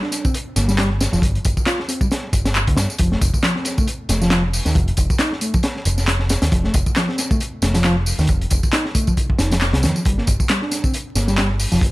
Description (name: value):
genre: breakbeat, breaks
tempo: 136 BPM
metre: 4/4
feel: swing 56% on 16ths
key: unclear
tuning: A4 = 440 Hz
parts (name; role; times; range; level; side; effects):
- mellow reed electric piano; riff; 0.0-11.8 s; Eb3 to F4; -23 LUFS; equal; fast tremolo, dub echo
- crunchy breakbeat drum kit; drums; 0.0-11.9 s; hi-hat, kick drum, snare drum; -20 LUFS; equal; none
- electronic tambourine and handclaps; drums; 0.1-11.9 s; none; -24 LUFS; equal; none
- deep dub picked electric bass; bass; 0.6-11.9 s; F1 to G2; -20 LUFS; equal; tube saturation
room: little or no reverb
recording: vinyl crackle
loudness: -16 LUFS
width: side -19 dB against mid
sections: 0.0-11.9 A section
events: none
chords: none